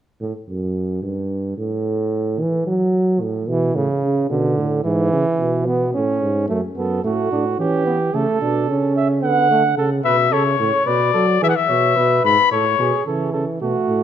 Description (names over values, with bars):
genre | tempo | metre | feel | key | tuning
classical, imitative canzona for brass ensemble | 110 BPM | 3/4 | straight | unclear | A4 = 440 Hz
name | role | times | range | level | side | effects
mellow bass trombone | bass | 0.2-14.0 s | F#2 to F#3 | -21 LUFS | right 1 dB | none
warm trombone | accompaniment | 3.5-9.6, 13.1-14.0 s | C#3 to D4 | -20 LUFS | right 2 dB | none
mellow flugelhorn | second line | 6.8-14.0 s | F#4 to F#5 | -21 LUFS | right 4 dB | none
warm cornet | melody | 10.0-13.1 s | C#5 to B5 | -16 LUFS | left 9 dB | none
room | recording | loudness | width
moderate recital hall reverb, RT60 1.6 s | none | -16 LUFS | side -10 dB against mid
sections
0.0-6.5 A section; 6.5-13.1 B section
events
none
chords
0.0 N.C.; 1.6 A5; 2.7 N.C.; 3.2 A; 4.3 Bm; 4.8 E/G#; 5.9 A; 6.5 D/F# (rootless); 7.6 Em; 8.1 A; 9.2 D; 9.8 A; 10.9 Bm; 11.4 E5; 12.5 A; 13.1 A/C#